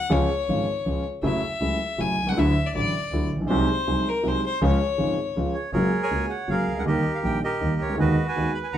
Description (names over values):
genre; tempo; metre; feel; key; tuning
tango; 160 BPM; 3/4; rubato; F# major from 5.7 s; A4 = 440 Hz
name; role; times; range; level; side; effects
clear violin; second line; 0.0-5.5 s; A#4 to G#5; -27 LUFS; left 4 dB; none
warm concert grand piano; accompaniment; 0.1-8.8 s; G#1 to G4; -25 LUFS; equal; none
rich double bass; bass; 0.1-8.8 s; F#1 to D#2; -28 LUFS; right 1 dB; none
bandoneon; melody; 5.5-8.8 s; F#4 to B5; -26 LUFS; right 2 dB; none
room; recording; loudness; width
moderate studio reverb, RT60 0.6 s; band playing live in one room; -22 LUFS; side -10 dB against mid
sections
0.0-5.7 A section; 5.7-8.8 B section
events
violin solo 0.0-5.7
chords
0.1 C#; 1.2 F#m7; 2.4 Dadd9; 3.5 G#7/B#; 4.6 C#; 5.7 F#add9; 6.9 D#; 8.0 G#m7/D#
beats
| 0.10 0.48 0.86 | 1.23 1.61 1.99 | 2.37 2.74 3.12 | 3.49 3.86 4.24 | 4.61 4.99 5.36 | 5.74 6.12 6.49 | 6.87 7.24 7.61 | 7.99 8.36 8.74